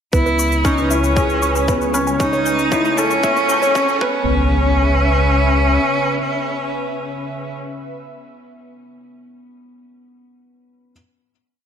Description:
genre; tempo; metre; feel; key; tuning
piano and strings electronica; 116 BPM; 4/4; straight; C# minor; A4 = 439 Hz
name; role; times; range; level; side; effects
bright cello; melody; 0.1-7.5 s; C#4 to E4; -19 LUFS; equal; none
lush unison pad; sustained chords; 0.1-8.0 s; C#3 to E5; -23 LUFS; equal; chorus
analog pluck; arpeggios; 0.1-4.5 s; B4 to G6; -25 LUFS; equal; chorus, sidechain pumping, ping-pong delay
felt-muted upright piano; riff; 0.1-10.9 s; B3 to C#5; -23 LUFS; equal; ping-pong delay
warm sub bass; bass; 0.1-5.8 s; C#2; -20 LUFS; equal; sidechain pumping
electronic kick drum; drums; 0.1-4.1 s; none; -22 LUFS; equal; overdrive
shaker; drums; 0.1-4.0 s; none; -29 LUFS; left 10 dB; overdrive
riser and impact; sound effects; 1.4-7.6 s; none; -29 LUFS; right 1 dB; none
room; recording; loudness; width
moderate recital hall reverb, RT60 1.5 s; high-pass filter; -14 LUFS; side -8 dB against mid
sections
0.1-4.3 build; 4.3-8.4 final chord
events
build-up 0.1-4.3; filter sweep on synth arpeggio sound 0.1-4.3; riser 1.4-4.3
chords
0.1 C#m7; 2.2 A/C#; 4.0 Bsus2/C#; 4.3 C#m7

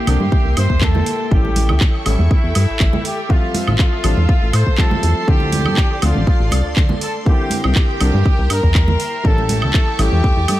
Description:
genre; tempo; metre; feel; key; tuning
nu-disco, nu disco; 121 BPM; 4/4; straight; unclear; A4 = 440 Hz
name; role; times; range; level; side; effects
clear trumpet section; melody; 0.0-10.6 s; E4 to C5; -23 LUFS; equal; analog delay
warm baby grand piano; accompaniment; 0.0-10.1 s; D3 to E5; -25 LUFS; left 2 dB; tape echo
string machine, full ensemble; sustained chords; 0.0-10.6 s; Bb3 to C#6; -26 LUFS; left 1 dB; ensemble chorus, sidechain pumping
chorused synth bass; bass; 0.1-10.6 s; A1 to A2; -16 LUFS; equal; sidechain pumping
house drum kit; drums; 0.1-10.6 s; handclaps, hi-hat, woodblock; -23 LUFS; right 2 dB; none
congas; percussion; 0.2-10.6 s; none; -25 LUFS; right 4 dB; none
electronic kick drum; drums; 0.3-10.3 s; none; -15 LUFS; equal; none
room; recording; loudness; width
light reverb; echo-heavy mix; -13 LUFS; side -15 dB against mid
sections
0.0-10.6 A section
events
none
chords
0.0 C7; 1.3 A7; 3.0 Fmaj7/A; 7.3 C7; 9.2 A7

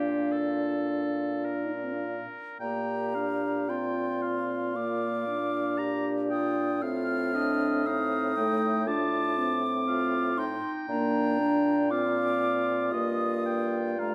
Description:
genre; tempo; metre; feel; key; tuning
classical, slow romantic movement for wind quintet; 51-60 BPM; 4/4; rubato; Bb major; A4 = 439 Hz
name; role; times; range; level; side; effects
silver concert flute; melody; 0.0-14.1 s; F5 to F6; -35 LUFS; equal; none
clear oboe; second line; 0.0-14.1 s; G4 to Bb5; -38 LUFS; equal; none
bright clarinet; accompaniment; 0.0-14.1 s; D4 to G4; -36 LUFS; equal; none
mellow French horn; accompaniment; 0.0-14.1 s; A3 to Eb4; -34 LUFS; equal; none
mellow bassoon; bass; 0.0-14.1 s; G2 to Bb2; -34 LUFS; equal; none
room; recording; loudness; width
moderate recital hall reverb, RT60 1.7 s; none; -28 LUFS; mono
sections
0.0-2.6 A section; 2.6-14.1 A section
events
none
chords
0.0 Bb; 6.8 F7/A; 10.9 Bb; 12.9 Eb/G

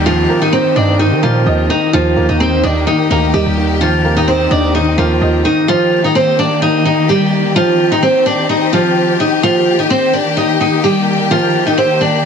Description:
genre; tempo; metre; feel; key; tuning
hip hop; 128 BPM; 4/4; half-time; Eb major; A4 = 440 Hz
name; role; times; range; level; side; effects
picked steel-string acoustic guitar; melody; 0.0-12.2 s; F3 to Eb5; -12 LUFS; equal; low-pass filter
felt-muted upright piano; accompaniment; 0.0-5.7 s; Eb3 to Eb5; -18 LUFS; right 4 dB; low-pass filter
warm symphonic string section; sustained chords; 0.0-12.3 s; Eb3 to G4; -18 LUFS; left 2 dB; none
distorted 808-style bass; bass; 0.0-5.4 s; D2 to Eb3; -16 LUFS; equal; distortion
downlifter; sound effects; 0.0-1.9 s; none; -30 LUFS; equal; none
room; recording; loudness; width
light reverb, studio ambience; heavily compressed radio sound; -10 LUFS; side -6 dB against mid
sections
0.0-5.7 A section; 5.7-12.3 B section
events
none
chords
0.0 Eb

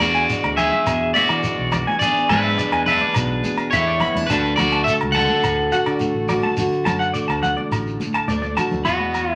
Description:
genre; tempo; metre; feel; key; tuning
highlife guitar band; 105 BPM; 4/4; straight; unclear; A4 = 438 Hz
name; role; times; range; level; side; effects
electric guitar at the edge of break-up; melody; 0.0-9.4 s; B3 to F#5; -22 LUFS; equal; none
picked steel-string acoustic guitar; accompaniment; 0.0-9.4 s; E2 to G#4; -27 LUFS; equal; none
fingered electric bass; bass; 0.0-9.4 s; A1 to E3; -29 LUFS; equal; none
agogo bells; percussion; 0.0-9.3 s; none; -32 LUFS; equal; none
congas; percussion; 0.0-9.1 s; none; -33 LUFS; equal; none
shekere; percussion; 0.0-9.3 s; none; -32 LUFS; equal; none
clean electric guitar; arpeggios; 0.1-8.9 s; D5 to B5; -25 LUFS; equal; none
room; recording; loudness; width
wet studio reverb, RT60 0.5 s; none; -19 LUFS; mono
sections
0.0-8.9 A section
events
drum fill 8.3-8.9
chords
0.0 E7; 4.3 D

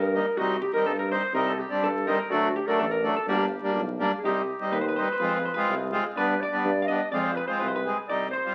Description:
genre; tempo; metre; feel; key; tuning
klezmer; 124 BPM; 2/4; straight; G harmonic minor, C harmonic minor from 4.2 s; A4 = 440 Hz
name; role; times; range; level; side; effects
warm clarinet; melody; 0.0-8.5 s; F#4 to Eb5; -32 LUFS; equal; none
vintage hollow-body jazz guitar; second line; 0.0-8.5 s; F#4 to F5; -35 LUFS; equal; none
warm tuba; bass; 0.0-8.4 s; G1 to G2; -34 LUFS; equal; none
accordion; accompaniment; 0.1-8.5 s; F#3 to Ab4; -29 LUFS; equal; none
room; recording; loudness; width
wet studio reverb, RT60 0.8 s; very old 78 rpm record, vinyl crackle; -26 LUFS; mono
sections
0.0-4.2 A section; 4.2-8.5 B section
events
none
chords
0.4 Cm; 2.3 D; 3.3 Gm; 4.2 Cm; 5.2 Fm; 6.2 G; 7.1 Fm

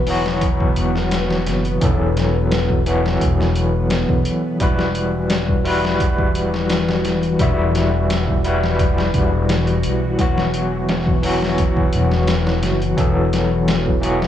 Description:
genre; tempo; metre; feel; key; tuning
trip hop; 86 BPM; 4/4; straight; E minor; A4 = 440 Hz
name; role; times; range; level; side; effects
overdriven tine electric piano; accompaniment; 0.0-14.3 s; E3 to E5; -20 LUFS; equal; tremolo, tape echo
string machine, cellos; sustained chords; 0.0-14.3 s; E3 to B4; -25 LUFS; left 1 dB; phaser, ensemble chorus, vintage 12-bit sampler grit
upright bass; bass; 0.0-14.3 s; E1 to B1; -21 LUFS; left 1 dB; none
trip hop sampler-style drum kit; drums; 0.1-14.3 s; hi-hat, kick drum, snare drum; -21 LUFS; equal; none
room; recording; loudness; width
little or no reverb; worn, warbling old tape, cassette tape, warbly pitch drift, studio reverb; -16 LUFS; side -10 dB against mid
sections
0.0-14.3 A section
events
none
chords
0.0 Bsus4/E; 4.6 Emadd9; 10.2 Bsus4/E

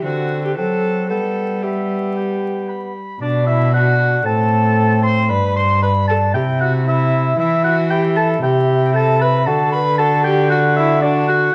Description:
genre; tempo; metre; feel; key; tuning
classical, renaissance-style consort dance; 115 BPM; 4/4; straight; G major; A4 = 439 Hz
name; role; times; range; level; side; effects
mellow oboe; melody; 0.0-11.5 s; D5 to C6; -22 LUFS; equal; none
rich viola; second line; 0.0-11.5 s; D4 to C5; -24 LUFS; equal; none
mellow bassoon; accompaniment; 0.0-11.5 s; B3 to F#4; -25 LUFS; equal; none
rich cello; bass; 0.0-11.5 s; G2 to G3; -20 LUFS; equal; none
room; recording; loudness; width
light reverb; close, detailed microphones, vinyl crackle; -17 LUFS; mono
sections
0.0-3.2 A section; 3.2-11.5 A section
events
none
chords
0.0 D7; 1.1 G; 3.2 Bm; 4.3 Am; 5.3 G5; 6.3 C; 7.4 Emadd9; 8.4 C; 9.5 D

